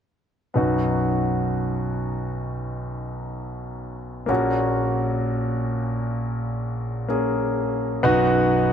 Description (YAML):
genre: pop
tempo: 64 BPM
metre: 4/4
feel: straight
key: B major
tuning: A4 = 441 Hz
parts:
  - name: clear concert grand piano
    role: accompaniment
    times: 0.5-8.7 s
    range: A#1 to G#4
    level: -21 LUFS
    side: equal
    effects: none
room: light reverb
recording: none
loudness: -21 LUFS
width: side -8 dB against mid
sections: 0.6-8.0 A section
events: none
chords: 0.6 B; 4.3 F#/A#; 8.0 B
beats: | 0.57 1.51 2.44 3.37 | 4.29 5.22 6.16 7.09 | 8.04